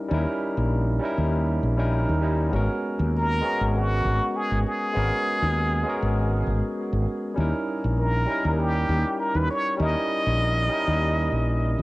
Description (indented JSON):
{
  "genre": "sunset chillout",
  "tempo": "99 BPM",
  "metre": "4/4",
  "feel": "swing 54% on 16ths",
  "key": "G# minor",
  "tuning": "A4 = 442 Hz",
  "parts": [
    { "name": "barky tine electric piano", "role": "accompaniment", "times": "0.0-11.8 s", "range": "G3 to D#5", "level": "-27 LUFS", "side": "equal", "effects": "auto-pan, cassette tape, tape echo" },
    { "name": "mellow fretless electric bass", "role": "bass", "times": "0.1-11.8 s", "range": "G#1 to D#2", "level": "-23 LUFS", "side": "equal", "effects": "tube saturation, wide subtle chorus" },
    { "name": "trumpet with plunger mute", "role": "melody", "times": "3.2-11.8 s", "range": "F#4 to D#5", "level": "-26 LUFS", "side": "equal", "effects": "cassette tape, analog delay" }
  ],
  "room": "light reverb",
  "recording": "home recording on cassette",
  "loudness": "-22 LUFS",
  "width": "side -20 dB against mid",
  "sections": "0.0-11.8 A section",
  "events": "none",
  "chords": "0.0 D#7b9; 2.5 G#m11; 7.4 D#7b9"
}